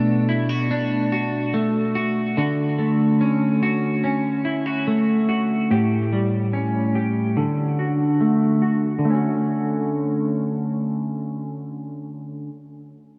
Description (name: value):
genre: dream pop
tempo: 72 BPM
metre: 4/4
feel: straight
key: D major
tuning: A4 = 440 Hz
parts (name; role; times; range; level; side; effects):
- clean electric guitar; arpeggios; 0.0-12.6 s; A2 to G4; -22 LUFS; equal; lush chorus, low-pass filter, digital delay
room: wet huge ambient reverb, RT60 4.0 s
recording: none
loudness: -21 LUFS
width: mono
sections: 0.0-9.0 A section; 9.0-12.4 B section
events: filter sweep on clean electric guitar 0.0-9.0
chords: 0.0 Bm7; 2.4 Dmaj7; 5.7 A7; 7.4 D; 9.0 Dmaj7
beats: 0.70 1.54 | 2.37 3.21 4.04 4.87 | 5.71 6.54 7.37 8.21 | 9.04 9.87 10.71 11.54